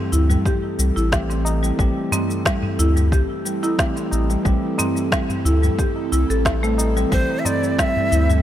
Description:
organic downtempo; 90 BPM; 4/4; straight; A minor; A4 = 440 Hz
bright tine electric piano; accompaniment; 0.0-8.4 s; E3 to A4; -27 LUFS; left 2 dB; sidechain pumping, tape echo
airy breathy pad; sustained chords; 0.0-8.4 s; C4 to A4; -28 LUFS; right 3 dB; chorus, sidechain pumping
buzzing marimba with hard mallets; arpeggios; 0.1-8.4 s; G3 to A4; -24 LUFS; right 1 dB; vintage 12-bit sampler grit, tape echo
round analog bass; bass; 0.1-8.4 s; A1 to D2; -19 LUFS; equal
electronic shaker and snare drum; drums; 0.1-8.4 s; -26 LUFS; equal; overdrive
tabla; percussion; 0.3-8.4 s; -28 LUFS; left 1 dB
electronic kick drum; drums; 0.5-7.9 s; -22 LUFS; equal
breathy Native American-style cedar flute; melody; 7.1-8.4 s; C5 to E5; -22 LUFS; left 1 dB
light reverb; -17 LUFS; side -12 dB against mid
0.0-8.4 A section
0.0 Am7

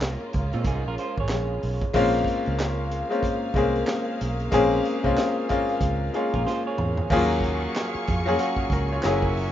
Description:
R&B, neo-soul; 93 BPM; 4/4; swing 60% on 16ths; A4 = 440 Hz
bright baby grand piano; accompaniment; 0.0-9.5 s; Db3 to Db5; -24 LUFS; left 2 dB
warm symphonic string section; sustained chords; 0.0-9.5 s; Ab3 to Db6; -34 LUFS; equal
vintage muted fingered electric bass; bass; 0.0-9.5 s; Gb1 to Bb2; -27 LUFS; right 1 dB
crunchy breakbeat drum kit; drums; 0.0-9.5 s; crash cymbal, handclaps, hi-hat, kick drum, snare drum, toms; -30 LUFS; right 1 dB
electric guitar through a small old amp; second line; 0.5-1.9, 6.2-7.1 s; C4 to Db5; -32 LUFS; right 5 dB
little or no reverb; rough home demo mix, nothing above 7.5 kHz; -22 LUFS; side -11 dB against mid
0.0-1.9 A section; 1.9-7.1 B section; 7.1-9.5 C section
drum fill 6.5-7.1
0.0 Bbm7; 7.1 Ebm11

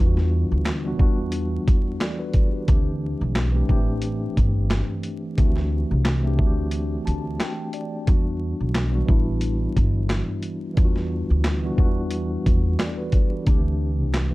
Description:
hip hop, boom-bap hip-hop; 89 BPM; 4/4; swing 55% on 16ths; E minor; A4 = 439 Hz
mellow tine electric piano; accompaniment; 0.0-14.3 s; E3 to A5; -27 LUFS; equal; medium stereo tremolo, cassette tape, high-pass filter, low-pass filter
upright bass; bass; 0.0-14.3 s; G1 to E2; -24 LUFS; equal
boom bap sampler-style drum kit; drums; 0.2-14.3 s; handclaps, hi-hat, kick drum, snare drum; -21 LUFS; equal; vintage 12-bit sampler grit
little or no reverb; dark, warm production, vinyl crackle; -20 LUFS; side -19 dB against mid
0.0-14.3 A section
break 6.7-8.1
0.0 Em7; 2.7 D7sus4; 8.1 Em7; 13.5 D7sus4

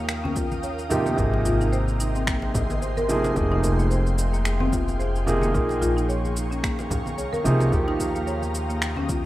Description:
organic downtempo; 110 BPM; 4/4; swing 56% on 16ths; Eb mixolydian; A4 = 439 Hz
felt-muted upright piano; accompaniment; 0.0-9.3 s; C3 to Ab4; -26 LUFS; right 2 dB; sidechain pumping, digital delay
ethereal airy pad; sustained chords; 0.0-9.3 s; G4 to Eb6; -33 LUFS; left 1 dB; ensemble chorus, built-in reverb, sidechain pumping
buzzing marimba with medium hard mallets; arpeggios; 0.0-9.3 s; Bb3 to Db5; -30 LUFS; left 1 dB; digital delay
upright bass; bass; 0.0-9.3 s; F1 to Eb2; -26 LUFS; equal; sidechain pumping
wind-like tuned noise texture; texture; 0.0-9.3 s; G5; -40 LUFS; right 3 dB; built-in reverb
electronic finger snaps and cabasa; drums; 0.1-9.2 s; -32 LUFS; equal; overdrive, small room ambience
congas; percussion; 0.3-9.2 s; -34 LUFS; equal
electronic kick drum; drums; 0.4-9.2 s; -30 LUFS; equal; overdrive, small room ambience
light reverb, small room reverb; rough home demo mix, faint mains hum; -21 LUFS; side -15 dB against mid
0.0-9.3 A section
0.0 Ebadd9; 1.2 Abadd9; 3.4 Fmadd9; 5.5 Bbm7; 7.7 Ebadd9

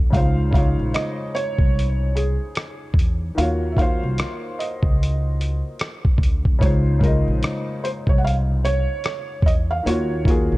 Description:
lo-fi hip hop; 74 BPM; 4/4; swing 62% on 16ths; Db major; A4 = 440 Hz
warm upright piano; accompaniment; 0.0-10.6 s; Db3 to Eb5; -26 LUFS; left 1 dB
upright bass; bass; 0.0-10.6 s; Bb1 to Fb2; -21 LUFS; equal
felt-muted upright piano; melody; 0.1-10.6 s; Ab4 to Gb5; -28 LUFS; right 2 dB; analog delay
dusty soul sampler-style drum kit; drums; 0.1-10.5 s; hi-hat, kick drum, rim click; -20 LUFS; equal; vintage 12-bit sampler grit
small room ambience; dark, warm production; -18 LUFS; side -19 dB against mid
0.0-10.6 A section
0.1 Dbmaj7; 3.4 Ebm9; 6.6 Dbmaj7; 9.9 Ebm9

